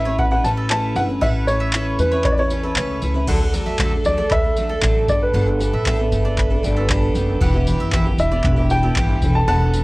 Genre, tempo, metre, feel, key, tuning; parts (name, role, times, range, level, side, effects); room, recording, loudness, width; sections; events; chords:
acoustic pop; 116 BPM; 4/4; straight; D major; A4 = 439 Hz
warm upright piano; melody; 0.0-9.8 s; B4 to A5; -22 LUFS; equal
picked twelve-string acoustic guitar; accompaniment; 0.0-9.8 s; D3 to B4; -23 LUFS; right 1 dB; plate reverb
upright bass; bass; 0.0-9.8 s; E1 to E2; -21 LUFS; equal; transformer saturation
bowl-back mandolin; arpeggios; 0.1-9.7 s; A4 to F#5; -32 LUFS; right 2 dB; digital delay
booming analog drum machine; drums; 0.2-9.8 s; crash cymbal, handclaps, kick drum, tambourine; -21 LUFS; equal
vibraphone with hard mallets; second line; 5.9-7.8 s; B4 to E5; -28 LUFS; right 2 dB; plate reverb
little or no reverb; worn, warbling old tape, cassette tape, warbly pitch drift; -16 LUFS; side -21 dB against mid
0.0-3.3 A section; 3.3-9.8 B section
0.0 Aadd9; 3.3 D; 5.1 Gadd9; 7.4 Em; 9.2 Aadd9/E